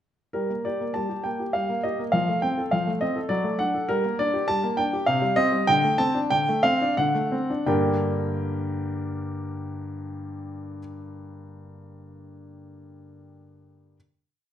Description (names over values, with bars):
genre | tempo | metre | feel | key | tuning
classical-period piano sonatina | 84-104 BPM | 3/4 | rubato | G minor | A4 = 440 Hz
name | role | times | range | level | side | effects
warm grand piano | solo | 0.3-14.0 s | G2 to A5 | -23 LUFS | equal | none
room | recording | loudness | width
wet recital hall reverb, RT60 1.6 s | none | -22 LUFS | side -10 dB against mid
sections
0.4-7.7 A section; 7.7-11.8 final chord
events
slowing down 3.0-7.7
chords
0.4 Gm; 2.1 F; 3.3 D/F#; 3.9 Gm; 5.1 Cm; 5.7 D5; 7.7 Gm